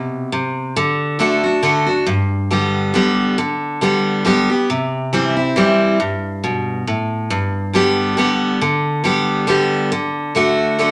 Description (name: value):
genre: bluegrass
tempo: 138 BPM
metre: 3/4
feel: swing 55% on 8ths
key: G major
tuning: A4 = 440 Hz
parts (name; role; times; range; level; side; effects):
- picked steel-string acoustic guitar; solo; 0.0-10.9 s; G2 to G4; -17 LUFS; equal; none
room: wet studio reverb, RT60 0.7 s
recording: none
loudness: -17 LUFS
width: mono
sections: 0.0-10.9 A section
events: none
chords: 0.0 N.C.; 0.8 D; 2.1 G; 4.7 C; 7.3 G; 9.9 D